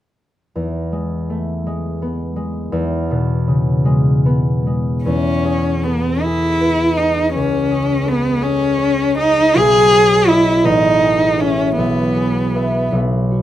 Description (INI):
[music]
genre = classical, romantic duo for cello and harp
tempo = 49-57 BPM (dotted quarters)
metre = 6/8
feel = rubato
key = E major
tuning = A4 = 440 Hz
[part]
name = concert harp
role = accompaniment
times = 0.6-13.4 s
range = A1 to E5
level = -17 LUFS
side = equal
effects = none
[part]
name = warm cello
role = melody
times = 5.0-12.9 s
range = B3 to G#4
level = -14 LUFS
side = equal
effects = none
[sound]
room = light reverb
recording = none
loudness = -14 LUFS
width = side -12 dB against mid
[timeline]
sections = 0.6-5.0 A section; 5.0-13.4 B section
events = none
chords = 0.6 E; 7.3 C#5; 9.6 G#m/B; 10.7 Amaj7; 11.8 E/B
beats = | 0.56 1.66 | 2.72 3.85 | 5.04 6.23 | 7.34 8.42 | 9.56 10.66 | 11.78 12.93